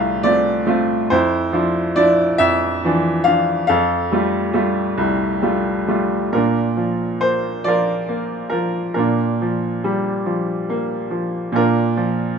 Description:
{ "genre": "classical, lyrical solo piano", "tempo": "46 BPM (dotted quarters)", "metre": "6/8", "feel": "rubato", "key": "Bb major from 6.3 s", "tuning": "A4 = 440 Hz", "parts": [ { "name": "bright baby grand piano", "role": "solo", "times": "0.0-12.4 s", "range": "C2 to F5", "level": "-16 LUFS", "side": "equal", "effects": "none" } ], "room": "moderate small room reverb, RT60 0.6 s", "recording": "dark, warm production", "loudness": "-16 LUFS", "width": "side -6 dB against mid", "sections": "0.0-6.3 A section; 6.3-12.4 B section", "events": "none", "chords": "0.0 F; 1.1 Dmadd9/F; 3.7 Fadd9; 6.3 Bb; 9.0 Gm7/Bb; 11.5 Bb", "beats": "| 1.12 2.41 | 3.70 5.01 | 6.35 7.67 | 8.98 10.27 | 11.54" }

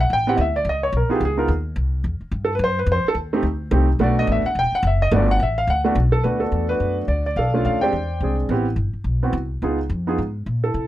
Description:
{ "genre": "jazz", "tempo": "214 BPM", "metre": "4/4", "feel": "swing 60% on 8ths", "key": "G major", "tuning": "A4 = 440 Hz", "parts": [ { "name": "warm concert grand piano", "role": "melody", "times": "0.0-10.9 s", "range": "Ab3 to G5", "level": "-20 LUFS", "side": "right 1 dB", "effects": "none" }, { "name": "upright bass", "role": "bass", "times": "0.0-10.9 s", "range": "E1 to C3", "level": "-22 LUFS", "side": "equal", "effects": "none" } ], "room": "little or no reverb", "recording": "dry, close 1970s-style studio recording", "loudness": "-18 LUFS", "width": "side -14 dB against mid", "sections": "0.0-6.2 A section; 6.2-10.9 B section", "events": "grand piano solo 0.0-6.2", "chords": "0.0 A7sus2; 0.7 C#7sus2; 1.8 C; 2.9 F9; 4.0 Gmaj9; 6.2 D69; 7.4 Bm7b5; 7.9 E7alt; 8.5 Am9; 9.6 C#9", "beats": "0.10 0.38 | 0.66 0.94 1.21 1.49 | 1.77 2.05 2.33 2.60 | 2.88 3.16 3.44 3.72 | 4.00 4.28 4.56 4.84 | 5.12 5.40 5.68 5.96 | 6.24 6.52 6.80 7.08 | 7.37 7.65 7.93 8.21 | 8.49 8.77 9.06 9.34 | 9.62 9.90 10.18 10.46 | 10.74" }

